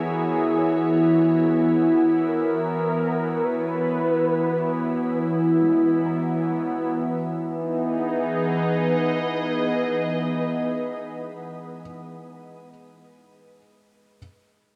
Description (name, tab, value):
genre	ambient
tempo	51 BPM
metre	4/4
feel	straight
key	E lydian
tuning	A4 = 440 Hz
part	warm velvety synth lead	melody	0.0-11.8 s	G#4 to B4	-30 LUFS	equal	chorus, shimmer reverb, tape echo
part	evolving wavetable pad	sustained chords	0.0-12.5 s	E3 to D#5	-24 LUFS	equal	chorus, built-in reverb, shimmer reverb
part	organ-like drone	drone	0.0-11.8 s	E3 to B3	-33 LUFS	equal	ensemble chorus, built-in reverb
part	felt-muted upright piano	arpeggios	0.6-14.2 s	G#3 to A#5	-46 LUFS	equal	none
room	wet spring reverb, RT60 2.9 s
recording	echo-heavy mix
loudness	-23 LUFS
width	mono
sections	0.0-7.0 A section; 7.0-11.7 B section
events	none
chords	0.0 E; 7.0 Emaj7